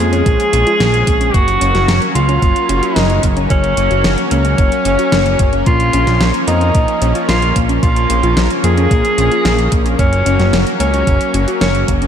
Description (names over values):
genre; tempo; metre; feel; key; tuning
synthwave; 111 BPM; 4/4; straight; Bb minor; A4 = 440 Hz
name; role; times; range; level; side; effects
warm tenor saxophone; melody; 0.0-11.9 s; Db4 to Ab4; -16 LUFS; equal; ping-pong delay, slapback echo
lush unison pad; sustained chords; 0.0-12.1 s; F3 to Db4; -20 LUFS; equal; chorus, sidechain pumping
warbly dusty pluck; arpeggios; 0.0-12.1 s; Bb3 to Bb4; -23 LUFS; left 2 dB; chorus, ping-pong delay, slapback echo
fat analog bass; bass; 0.0-12.1 s; Gb1 to F2; -16 LUFS; equal; none
pop drum kit; drums; 0.1-12.1 s; hi-hat, snare drum; -20 LUFS; left 1 dB; slapback echo
electronic kick drum; drums; 0.3-12.0 s; none; -15 LUFS; equal; none
room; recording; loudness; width
moderate concert hall reverb, RT60 1.9 s; big arena sound; -11 LUFS; side -8 dB against mid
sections
0.0-12.1 A section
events
none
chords
0.0 Bbm; 1.3 Gb; 5.7 Bbm; 10.0 Gb